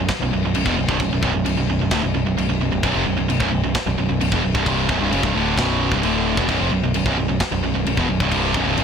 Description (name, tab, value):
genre	heavy metal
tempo	131 BPM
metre	4/4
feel	straight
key	B phrygian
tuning	A4 = 441 Hz
part	sludgy distorted guitar	riff	0.0-8.8 s	B1 to D3	-23 LUFS	left 11 dB	overdrive
part	tight distorted guitar	riff	0.0-8.8 s	B1 to D3	-22 LUFS	right 11 dB	distortion
part	growling picked electric bass	bass	0.0-8.8 s	B0 to F#1	-24 LUFS	left 1 dB	overdrive
part	tight metal drum kit	drums	0.1-8.8 s	crash cymbal, kick drum, snare drum	-24 LUFS	left 2 dB	soft clipping on kick
room	light reverb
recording	blown-out, overdriven recording, overdrive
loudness	-17 LUFS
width	side -7 dB against mid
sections	0.0-8.8 A section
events	none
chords	0.0 Bm